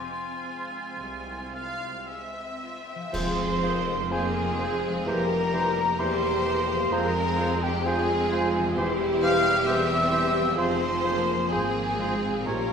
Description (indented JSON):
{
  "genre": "classical, slow romantic movement for symphony orchestra",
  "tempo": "54-68 BPM",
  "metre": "4/4",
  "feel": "rubato",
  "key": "F minor",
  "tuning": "A4 = 438 Hz",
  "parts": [
    { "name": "rich studio violin section", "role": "melody", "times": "0.0-12.7 s", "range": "G4 to Ab5", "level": "-32 LUFS", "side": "left 1 dB", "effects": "none" },
    { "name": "clear oboe", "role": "second line", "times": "0.0-12.6 s", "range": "F4 to Db5", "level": "-36 LUFS", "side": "right 1 dB", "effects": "none" },
    { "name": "rich studio violin section", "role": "second line", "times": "0.0-12.7 s", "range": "Ab3 to C5", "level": "-38 LUFS", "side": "left 2 dB", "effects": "none" },
    { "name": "silver concert flute", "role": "second line", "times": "0.0-12.7 s", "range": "G5 to F6", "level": "-29 LUFS", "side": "equal", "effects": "none" },
    { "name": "clear studio viola section", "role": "accompaniment", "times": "0.0-12.7 s", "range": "F3 to E4", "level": "-33 LUFS", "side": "right 2 dB", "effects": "none" },
    { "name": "mellow French horn section", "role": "sustained chords", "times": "0.0-12.7 s", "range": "Ab3 to C5", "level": "-32 LUFS", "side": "left 2 dB", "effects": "none" },
    { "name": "concert harp", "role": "arpeggios", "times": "0.0-12.7 s", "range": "Bb2 to G4", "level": "-37 LUFS", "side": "left 5 dB", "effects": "none" },
    { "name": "rich studio cello section", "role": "bass", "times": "1.0-12.7 s", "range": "C2 to Bb2", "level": "-34 LUFS", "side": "right 2 dB", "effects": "none" },
    { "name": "rich studio double bass section", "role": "bass", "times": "1.0-12.7 s", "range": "E1 to C2", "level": "-35 LUFS", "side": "right 2 dB", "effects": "none" },
    { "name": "mellow clarinet", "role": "second line", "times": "3.1-12.6 s", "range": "F4 to Ab4", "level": "-37 LUFS", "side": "equal", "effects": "none" },
    { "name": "mellow bassoon", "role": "accompaniment", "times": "3.1-12.6 s", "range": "E3 to F3", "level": "-34 LUFS", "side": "right 2 dB", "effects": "none" },
    { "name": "clash cymbals and concert bass drum", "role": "percussion", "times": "3.1-5.0 s", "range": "none", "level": "-39 LUFS", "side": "equal", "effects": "none" }
  ],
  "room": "wet recital hall reverb, RT60 1.4 s",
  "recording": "minimal, uncompressed stereo recording",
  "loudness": "-23 LUFS",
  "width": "side -6 dB against mid",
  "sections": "0.0-3.1 A section; 3.1-12.7 A section",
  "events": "band accent 3.1-4.1",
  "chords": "0.0 Fm; 5.1 C7/F; 6.9 Fm; 8.8 C/E; 10.6 Fm"
}